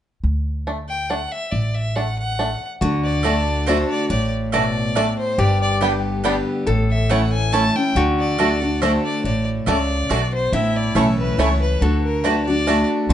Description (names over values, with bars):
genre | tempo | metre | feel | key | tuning
bluegrass | 140 BPM | 3/4 | swing 53% on 8ths | D major | A4 = 440 Hz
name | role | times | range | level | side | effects
upright bass | bass | 0.2-13.1 s | G1 to D2 | -22 LUFS | equal | none
bluegrass banjo | melody | 0.7-13.1 s | D3 to E4 | -25 LUFS | right 1 dB | plate reverb
clear fiddle | melody | 0.9-12.9 s | A4 to A5 | -25 LUFS | left 2 dB | plate reverb
lap resonator guitar | second line | 2.8-13.1 s | E4 to A4 | -26 LUFS | left 2 dB | none
picked steel-string acoustic guitar | accompaniment | 2.8-13.1 s | G2 to G4 | -21 LUFS | left 1 dB | none
mandolin | stabs | 3.2-12.8 s | A3 to A5 | -24 LUFS | right 4 dB | none
room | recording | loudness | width
moderate studio reverb, RT60 0.9 s | nothing above 10.9 kHz | -17 LUFS | side -10 dB against mid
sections
0.2-2.8 A section; 2.8-13.1 B section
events
none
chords
0.2 D; 5.4 G; 6.7 A; 8.0 D; 10.5 A; 11.8 D